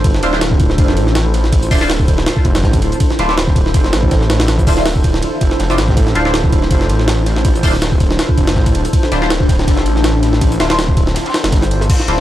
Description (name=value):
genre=drum and bass, jungle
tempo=162 BPM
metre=4/4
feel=swing 54% on 16ths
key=D minor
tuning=A4 = 440 Hz
part: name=granular cloud pad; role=sustained chords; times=0.0-12.2 s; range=D4 to C5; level=-20 LUFS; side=right 1 dB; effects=built-in reverb
part: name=detuned saw bass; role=bass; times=0.0-12.2 s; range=D1 to A1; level=-16 LUFS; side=equal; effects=none
part: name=crunchy breakbeat drum kit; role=drums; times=0.0-11.9 s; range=hi-hat, shaker, snare drum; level=-30 LUFS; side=left 2 dB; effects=none
part: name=jungle sampler-style drum kit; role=drums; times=0.0-12.2 s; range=crash cymbal, hi-hat, kick drum, ride cymbal, snare drum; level=-14 LUFS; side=equal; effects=none
part: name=band-passed chord stab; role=stabs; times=0.2-12.2 s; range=D4 to C5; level=-21 LUFS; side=left 1 dB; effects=phaser, wide subtle chorus, dub echo
room=little or no reverb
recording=dry, gritty hardware recording, transformer saturation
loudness=-11 LUFS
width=side -13 dB against mid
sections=0.0-11.9 A section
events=drop 0.0-11.9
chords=0.0 Dm9